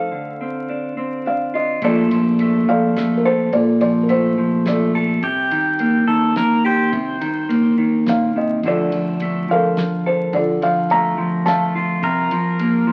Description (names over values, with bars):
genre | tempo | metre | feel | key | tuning
acoustic folk-pop ballad | 106 BPM | 3/4 | straight | Bb major | A4 = 439 Hz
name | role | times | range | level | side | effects
felt-muted upright piano | melody | 0.0-5.2, 8.1-12.0 s | F4 to Bb5 | -22 LUFS | equal | none
mellow electric guitar | accompaniment | 0.0-12.9 s | F2 to A4 | -20 LUFS | equal | none
fingered electric bass | bass | 1.8-12.9 s | Bb1 to D2 | -42 LUFS | equal | none
cloth-damped thuddy drum kit | drums | 1.8-12.7 s | kick drum, ride cymbal, snare drum | -36 LUFS | equal | none
pedal steel guitar | second line | 5.2-7.7, 12.0-12.9 s | G4 to C5 | -23 LUFS | equal | none
room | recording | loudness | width
moderate large studio reverb, RT60 1.0 s | very old 78 rpm record, vinyl crackle | -18 LUFS | mono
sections
0.0-1.8 A section; 1.8-12.9 B section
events
none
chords
0.1 Dm7; 1.8 Bbmaj7; 5.2 Cm7; 8.6 Bbmaj7/D; 12.0 Fsus4/C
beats
| 0.11 0.68 1.25 | 1.82 2.39 2.96 | 3.53 4.10 4.66 | 5.23 5.80 6.36 | 6.93 7.50 8.07 | 8.64 9.20 9.77 | 10.33 10.90 11.46 | 12.03 12.59